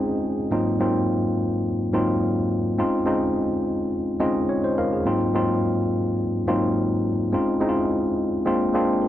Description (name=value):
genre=disco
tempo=106 BPM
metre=4/4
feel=straight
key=unclear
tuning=A4 = 440 Hz
part: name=tine electric piano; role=solo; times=0.0-9.1 s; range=Ab2 to F5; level=-20 LUFS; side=equal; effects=none
room=light reverb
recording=none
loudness=-20 LUFS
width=side -12 dB against mid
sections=0.0-9.1 A section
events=tine electric piano fill 3.9-5.1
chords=0.0 Dbmaj9; 0.5 Ab13; 2.8 Dbmaj9; 5.1 Ab13; 7.3 Dbmaj9; 8.5 Bb7